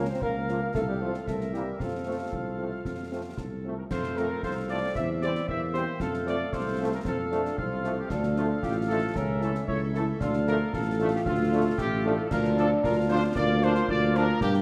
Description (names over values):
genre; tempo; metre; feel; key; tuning
military-style march for wind band; 114 BPM; 2/4; straight; F major; A4 = 440 Hz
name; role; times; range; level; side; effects
dark trumpet section; melody; 0.0-14.5 s; F4 to E5; -36 LUFS; equal; none
clear euphonium; second line; 0.0-14.6 s; F3 to F4; -35 LUFS; equal; none
clear woodwind section; second line; 0.0-14.6 s; D4 to G5; -37 LUFS; equal; none
dark French horn section; accompaniment; 0.0-14.2 s; F3 to G4; -37 LUFS; equal; none
bright trombone section; sustained chords; 0.0-14.2 s; E3 to D4; -40 LUFS; equal; none
dark tuba; bass; 0.0-14.6 s; A1 to G2; -32 LUFS; equal; none
concert bass drum, concert snare drum and clash cymbals; drums; 0.2-14.6 s; none; -39 LUFS; equal; none
room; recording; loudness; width
wet scoring stage reverb, RT60 1.7 s; none; -28 LUFS; mono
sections
0.0-3.9 A section; 3.9-14.6 B section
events
none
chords
0.0 Bbm/Db; 0.7 F/C; 1.3 C7; 1.8 F; 5.0 C/E; 6.0 F; 8.1 Dm; 9.2 A/C#; 10.2 Dm; 12.3 Bb/D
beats
0.22 | 0.74 1.27 | 1.80 2.33 | 2.85 3.38 | 3.90 4.43 | 4.96 5.48 | 6.01 6.53 | 7.06 7.58 | 8.11 8.63 | 9.16 9.68 | 10.21 10.73 | 11.26 11.78 | 12.31 12.84 | 13.36 13.89 | 14.41